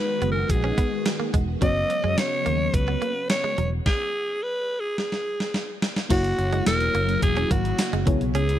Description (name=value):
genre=1980s-style pop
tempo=107 BPM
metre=4/4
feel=straight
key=F# mixolydian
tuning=A4 = 439 Hz
part: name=raspy alto saxophone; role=melody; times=0.0-8.6 s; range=F#4 to D#5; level=-26 LUFS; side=equal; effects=tape echo
part: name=mellow FM electric piano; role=accompaniment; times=0.0-8.6 s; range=C#3 to C#5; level=-31 LUFS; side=left 3 dB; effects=chorus
part: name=phased string machine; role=sustained chords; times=0.0-8.6 s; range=C#3 to F#4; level=-31 LUFS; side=left 2 dB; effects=ensemble chorus, phaser
part: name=direct-recorded clean electric guitar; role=riff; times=0.2-8.5 s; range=F#3 to C#4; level=-32 LUFS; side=right 7 dB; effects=wide subtle chorus
part: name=fingered electric bass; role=bass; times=0.2-8.6 s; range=E1 to F#2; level=-26 LUFS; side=equal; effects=none
part: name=gated 80s digital drum machine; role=drums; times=0.2-8.6 s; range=crash cymbal, hi-hat, kick drum, snare drum, tambourine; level=-25 LUFS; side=equal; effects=gated reverb, gated reverb snare
room=little or no reverb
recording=dry, close 1970s-style studio recording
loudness=-21 LUFS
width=side -11 dB against mid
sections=0.0-6.1 A section; 6.1-8.6 B section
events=stop 3.9-6.1; drum fill 5.0-6.1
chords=0.0 G#m7/F#; 3.9 N.C.; 6.1 F#7; 8.1 C#m7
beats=0.50 1.06 | 1.62 2.18 2.74 3.30 | 3.86 4.42 4.98 5.54 | 6.11 6.67 7.23 7.79 | 8.35